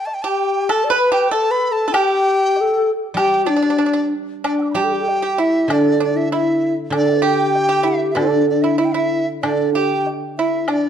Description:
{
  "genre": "chinese traditional, Chinese chamber ensemble",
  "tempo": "96 BPM",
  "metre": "2/4",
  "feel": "rubato",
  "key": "D zhi mode",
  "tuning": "A4 = 438 Hz",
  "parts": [
    { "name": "breathy large dizi", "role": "melody", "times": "0.0-10.9 s", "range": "D5 to E6", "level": "-22 LUFS", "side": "equal", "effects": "none" },
    { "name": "woodblock", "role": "percussion", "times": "0.1-10.8 s", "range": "none", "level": "-27 LUFS", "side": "left 3 dB", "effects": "none" },
    { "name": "pipa", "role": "second line", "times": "0.2-10.9 s", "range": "D4 to B4", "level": "-22 LUFS", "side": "right 6 dB", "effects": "none" },
    { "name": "mellow hollow xiao", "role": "second line", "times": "0.3-10.9 s", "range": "D4 to A5", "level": "-19 LUFS", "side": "left 3 dB", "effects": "none" },
    { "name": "guzheng", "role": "accompaniment", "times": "3.1-10.9 s", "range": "D3 to G3", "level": "-21 LUFS", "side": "right 3 dB", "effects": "none" }
  ],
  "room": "moderate recital hall reverb, RT60 1.4 s",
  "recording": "dark, warm production",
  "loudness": "-15 LUFS",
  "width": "side -8 dB against mid",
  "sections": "0.0-4.4 A section; 4.4-10.9 B section",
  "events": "none",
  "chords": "none",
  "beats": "0.07 | 0.70 1.32 | 1.93 2.55 | 3.16 3.80 | 4.44 5.07 | 5.70 6.32 | 6.93 7.55 | 8.17 8.80 | 9.44 10.07 | 10.70"
}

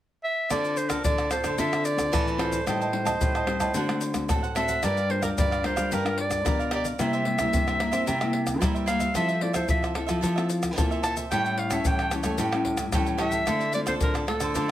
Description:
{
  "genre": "samba and choro",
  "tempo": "111 BPM",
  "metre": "4/4",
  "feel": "straight",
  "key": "D minor",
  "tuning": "A4 = 440 Hz",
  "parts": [
    { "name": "breathy clarinet", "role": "melody", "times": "0.2-14.7 s", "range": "A4 to A5", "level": "-28 LUFS", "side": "equal", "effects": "none" },
    { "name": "cavaquinho", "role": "accompaniment", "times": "0.5-14.7 s", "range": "D4 to A5", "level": "-32 LUFS", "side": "right 4 dB", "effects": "none" },
    { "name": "nylon-string guitar", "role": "accompaniment", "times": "0.5-14.7 s", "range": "G2 to Bb4", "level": "-31 LUFS", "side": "left 3 dB", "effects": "none" },
    { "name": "nylon-string guitar", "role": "bass", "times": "0.5-14.7 s", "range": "G2 to C4", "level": "-29 LUFS", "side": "equal", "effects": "none" },
    { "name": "tube shaker, surdo, pandeiro and tamborim", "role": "percussion", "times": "0.5-14.7 s", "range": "none", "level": "-29 LUFS", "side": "left 1 dB", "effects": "none" }
  ],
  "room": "moderate studio reverb, RT60 0.6 s",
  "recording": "none",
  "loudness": "-23 LUFS",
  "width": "side -12 dB against mid",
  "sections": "0.5-14.7 A section",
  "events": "none",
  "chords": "0.0 N.C.; 0.5 Dm7; 2.7 Am7b5; 3.7 D7; 4.8 Gm7; 7.0 C7; 9.2 Fmaj7; 11.3 A7; 13.5 Dm7",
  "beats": "| 0.50 1.04 1.58 2.13 | 2.67 3.21 3.75 4.29 | 4.83 5.37 5.91 6.45 | 6.99 7.53 8.07 8.61 | 9.15 9.69 10.23 10.78 | 11.31 11.86 12.40 12.94 | 13.48 14.02 14.56"
}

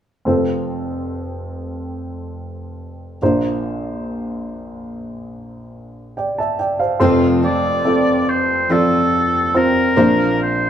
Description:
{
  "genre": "pop",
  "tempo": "71 BPM",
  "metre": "4/4",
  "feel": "straight",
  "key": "unclear",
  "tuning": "A4 = 438 Hz",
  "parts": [
    { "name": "warm baby grand piano", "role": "accompaniment", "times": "0.3-10.7 s", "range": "F1 to A5", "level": "-18 LUFS", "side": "equal", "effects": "none" },
    { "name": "picked steel-string acoustic guitar", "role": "arpeggios", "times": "7.0-10.7 s", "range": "F2 to F4", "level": "-24 LUFS", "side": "left 4 dB", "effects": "none" },
    { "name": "warm oboe", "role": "melody", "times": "7.5-10.7 s", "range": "A4 to D5", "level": "-18 LUFS", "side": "equal", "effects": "none" }
  ],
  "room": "moderate studio reverb, RT60 0.7 s",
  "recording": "band playing live in one room",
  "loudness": "-15 LUFS",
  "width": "side -9 dB against mid",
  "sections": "0.3-7.0 A section; 7.0-10.7 B section",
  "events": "none",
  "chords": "0.3 F; 3.2 Bbadd9; 7.0 F; 10.0 Bbadd9",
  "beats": "| 0.25 1.10 1.94 2.79 | 3.63 4.48 5.32 6.17 | 7.01 7.86 8.70 9.55 | 10.39"
}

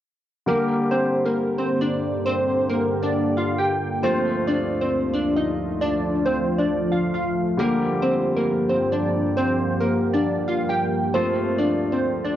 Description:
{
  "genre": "hip hop",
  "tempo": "135 BPM",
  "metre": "4/4",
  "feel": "half-time",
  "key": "G minor",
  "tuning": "A4 = 440 Hz",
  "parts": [
    { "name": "glassy wavetable pluck", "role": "melody", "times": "0.5-12.4 s", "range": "Bb3 to G5", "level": "-22 LUFS", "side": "equal", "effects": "chorus, low-pass filter, cassette tape, analog delay" },
    { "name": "warm concert grand piano", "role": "accompaniment", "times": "0.5-12.4 s", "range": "D3 to G4", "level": "-27 LUFS", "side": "left 1 dB", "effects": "low-pass filter, cassette tape" },
    { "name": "deep dark ambient pad", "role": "sustained chords", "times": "1.4-12.4 s", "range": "D2 to G4", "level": "-26 LUFS", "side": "right 1 dB", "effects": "chorus, built-in reverb, cassette tape" }
  ],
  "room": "wet booth ambience, RT60 0.2 s",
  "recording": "home recording on cassette",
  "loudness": "-20 LUFS",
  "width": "side -11 dB against mid",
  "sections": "0.5-12.4 A section",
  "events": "none",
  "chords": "0.5 Gm; 4.0 Dm; 7.6 Gm; 11.1 Dm",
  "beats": "| 0.47 0.92 1.36 1.81 | 2.25 2.70 3.14 3.59 | 4.03 4.47 4.92 5.36 | 5.81 6.25 6.70 7.14 | 7.59 8.03 8.47 8.92 | 9.36 9.81 10.25 10.70 | 11.14 11.59 12.03"
}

